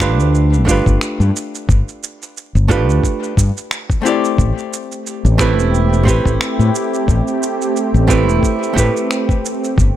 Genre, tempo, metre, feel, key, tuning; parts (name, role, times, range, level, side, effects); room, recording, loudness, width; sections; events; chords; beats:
sunset chillout; 89 BPM; 4/4; swing 55% on 16ths; A minor; A4 = 441 Hz
archtop guitar, miked and amplified; accompaniment; 0.0-9.8 s; A3 to D5; -19 LUFS; moving between left 7 dB and right 6 dB; auto-pan, ping-pong delay
fretless electric bass; bass; 0.0-9.9 s; E1 to A2; -14 LUFS; left 1 dB
electronic finger snaps and shaker; drums; 0.0-9.9 s; -25 LUFS; right 3 dB; overdrive, small room ambience
electronic kick drum; drums; 0.0-9.9 s; -16 LUFS; left 1 dB; overdrive, small room ambience
lush unison pad; sustained chords; 4.9-10.0 s; F3 to B4; -20 LUFS; right 1 dB; chorus
light reverb; -13 LUFS; side -12 dB against mid
0.0-10.0 A section
0.0 G9; 4.4 Am9
0.34 1.01 | 1.69 2.36 3.04 3.71 | 4.38 5.06 5.73 6.41 | 7.08 7.75 8.43 9.10 | 9.78